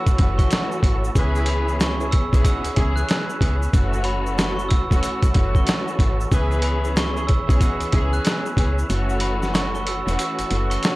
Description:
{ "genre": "hip hop, boom-bap hip-hop", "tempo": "93 BPM", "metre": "4/4", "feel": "swing 63% on 16ths", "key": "C# minor", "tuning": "A4 = 440 Hz", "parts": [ { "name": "glockenspiel with brass mallets", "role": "melody", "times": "0.0-11.0 s", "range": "B5 to F#6", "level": "-28 LUFS", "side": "right 2 dB", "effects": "high-pass filter, low-pass filter, analog delay" }, { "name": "warm symphonic string section", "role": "accompaniment", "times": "0.0-11.0 s", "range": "E3 to G#4", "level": "-27 LUFS", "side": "left 1 dB", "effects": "cassette tape, high-pass filter, low-pass filter" }, { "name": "mellow tonewheel organ", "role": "sustained chords", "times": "0.0-11.0 s", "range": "F#4 to E6", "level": "-33 LUFS", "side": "equal", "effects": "chorus vibrato, fast rotary speaker, high-pass filter, low-pass filter" }, { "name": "woody FM bass", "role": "bass", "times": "0.1-10.8 s", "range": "E1 to C#2", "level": "-24 LUFS", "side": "equal", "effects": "transformer saturation" }, { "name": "boom bap sampler-style drum kit", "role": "drums", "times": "0.1-11.0 s", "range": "hi-hat, kick drum, snare drum", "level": "-20 LUFS", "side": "equal", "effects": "none" }, { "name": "tube shaker", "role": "percussion", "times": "0.1-11.0 s", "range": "none", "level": "-42 LUFS", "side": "right 1 dB", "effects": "none" }, { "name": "warm horn section", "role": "stabs", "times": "1.2-8.2 s", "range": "B3 to B4", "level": "-32 LUFS", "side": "equal", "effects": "high-pass filter, low-pass filter, analog delay" } ], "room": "little or no reverb", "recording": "dry, gritty hardware recording, cassette tape", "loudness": "-18 LUFS", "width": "side -19 dB against mid", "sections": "0.0-11.0 A section", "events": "break 8.9-11.0", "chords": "0.0 F#m7; 1.2 C#m7; 3.7 F#m7; 6.3 C#m7; 8.9 F#m7", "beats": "0.51 | 1.16 1.80 2.45 3.09 | 3.74 4.38 5.03 5.67 | 6.32 6.96 7.61 8.25 | 8.90 9.54 10.19 10.83" }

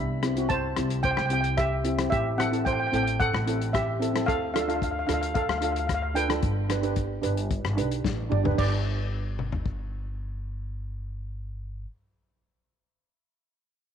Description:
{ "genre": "calypso", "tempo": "112 BPM", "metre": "4/4", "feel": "straight", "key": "G major", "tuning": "A4 = 442 Hz", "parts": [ { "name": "steel pan", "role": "melody", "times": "0.0-11.8 s", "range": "G4 to B5", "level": "-28 LUFS", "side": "right 1 dB", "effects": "none" }, { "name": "upright bass", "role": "bass", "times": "0.0-11.8 s", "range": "G1 to D2", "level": "-30 LUFS", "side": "equal", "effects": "none" }, { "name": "steel pan", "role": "accompaniment", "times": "0.2-11.9 s", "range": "C4 to D5", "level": "-30 LUFS", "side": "right 2 dB", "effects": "none" }, { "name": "warm soul drum kit", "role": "drums", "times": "0.2-9.8 s", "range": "crash cymbal, hi-hat, kick drum, rim click, snare drum, toms", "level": "-31 LUFS", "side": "left 4 dB", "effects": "none" } ], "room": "moderate plate reverb, RT60 2.1 s", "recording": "1960s-style stereo", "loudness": "-24 LUFS", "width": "side -8 dB against mid", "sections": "0.0-8.6 A section; 8.6-12.9 B section", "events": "drum fill 8.0-8.6", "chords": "0.0 C; 2.1 Am7; 4.3 Dm; 6.4 G", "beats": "0.50 1.04 1.58 | 2.12 2.66 3.20 3.73 | 4.27 4.81 5.35 5.89 | 6.43 6.96 7.50 8.04 | 8.58 9.12 9.65 10.19 | 10.73 11.27 11.81" }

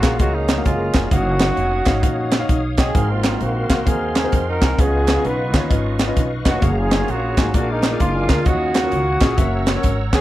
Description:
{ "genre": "uptempo gospel", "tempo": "131 BPM", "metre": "4/4", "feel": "swing 64% on 8ths", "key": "F# major", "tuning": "A4 = 440 Hz", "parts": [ { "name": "dark horn section", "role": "melody", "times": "0.0-10.2 s", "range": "G#3 to B4", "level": "-22 LUFS", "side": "right 1 dB", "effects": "none" }, { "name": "warm concert grand piano", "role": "accompaniment", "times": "0.0-10.2 s", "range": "G#2 to G#5", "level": "-26 LUFS", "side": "left 2 dB", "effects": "none" }, { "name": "bright tonewheel organ", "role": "sustained chords", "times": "0.0-10.2 s", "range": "G#4 to E6", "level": "-29 LUFS", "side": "right 1 dB", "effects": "chorus vibrato, slow rotary speaker" }, { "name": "upright bass", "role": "bass", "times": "0.0-10.2 s", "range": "E#1 to E#2", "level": "-22 LUFS", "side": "equal", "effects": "none" }, { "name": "crisp fusion drum kit", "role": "drums", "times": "0.0-10.2 s", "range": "hi-hat, kick drum, snare drum", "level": "-19 LUFS", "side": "equal", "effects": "none" }, { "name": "group handclap", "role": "percussion", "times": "0.0-10.2 s", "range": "none", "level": "-30 LUFS", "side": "right 11 dB", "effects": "none" } ], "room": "light reverb", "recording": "none", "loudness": "-16 LUFS", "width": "side -15 dB against mid", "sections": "0.0-10.2 A section", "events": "none", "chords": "0.0 F#maj9; 1.1 D#m9; 3.0 G#13; 4.8 C#9; 6.6 F#maj9; 7.5 A#7; 8.5 D#m9; 9.4 F#7", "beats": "0.20 0.66 | 1.12 1.57 2.03 2.49 | 2.95 3.41 3.87 4.33 | 4.79 5.25 5.70 6.16 | 6.62 7.08 7.54 8.00 | 8.46 8.92 9.38 9.84" }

